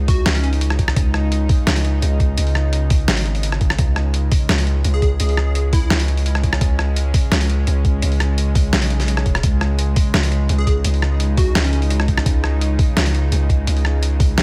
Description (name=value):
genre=half-time drum and bass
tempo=170 BPM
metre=4/4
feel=half-time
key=unclear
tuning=A4 = 440 Hz
part: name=bowed-like drone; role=sustained chords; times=0.0-14.4 s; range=C#3 to D#4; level=-29 LUFS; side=equal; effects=built-in reverb, sidechain pumping
part: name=long sustained 808-style bass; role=bass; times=0.0-14.4 s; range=E1 to C#2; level=-20 LUFS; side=equal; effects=none
part: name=plucky unison lead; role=melody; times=0.1-0.5, 4.9-6.0, 10.6-11.8 s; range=C#4 to G#4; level=-30 LUFS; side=equal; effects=phaser, vintage 12-bit sampler grit, delay
part: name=boom bap sampler-style drum kit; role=drums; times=0.1-14.4 s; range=hi-hat, rim click, snare drum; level=-24 LUFS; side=equal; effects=studio reverb
part: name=electronic kick drum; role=drums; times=0.1-14.3 s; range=none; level=-19 LUFS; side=equal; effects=studio reverb
room=little or no reverb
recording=none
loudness=-18 LUFS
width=mono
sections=0.0-14.4 A section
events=none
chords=0.0 C#5